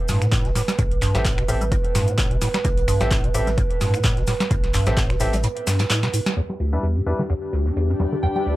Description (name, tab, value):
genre	acid house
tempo	129 BPM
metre	4/4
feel	swing 55% on 16ths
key	unclear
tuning	A4 = 437 Hz
part	dark analog pad	sustained chords	0.0-8.6 s	G4 to B4	-29 LUFS	right 5 dB	chorus, vintage 12-bit sampler grit, sidechain pumping
part	liquid acid bass	riff	0.1-8.6 s	D2 to G3	-23 LUFS	equal	chorus, tube saturation, sidechain pumping
part	saturated sub bass	bass	0.1-5.4 s	A1 to A2	-25 LUFS	equal	sidechain pumping
part	booming analog drum machine	drums	0.1-8.4 s	finger snaps, handclaps, hi-hat, snare drum	-26 LUFS	equal	low-pass filter on hats, low-pass filter on snare
part	damped 70s drum kit	drums	0.1-8.6 s	hi-hat, snare drum	-40 LUFS	right 4 dB	none
part	cabasa	percussion	0.1-6.3 s	none	-34 LUFS	left 4 dB	none
part	electronic kick drum	drums	0.3-5.1 s	none	-22 LUFS	equal	none
part	bright grand piano	stabs	1.1-7.2 s	G3 to E5	-30 LUFS	left 2 dB	low-pass filter, tape echo
part	granular cloud pad	texture	7.0-8.6 s	D4 to E5	-28 LUFS	left 3 dB	built-in reverb, sidechain pumping
part	soft synth bell	melody	8.2-8.4 s	G5	-26 LUFS	equal	chorus
room	light reverb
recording	none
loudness	-19 LUFS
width	side -16 dB against mid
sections	0.0-6.4 A section; 6.4-8.6 B section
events	drum fill 5.7-6.4; band accent 6.3; filter sweep on acid bass 6.4-8.6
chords	0.0 Am7; 6.4 Em7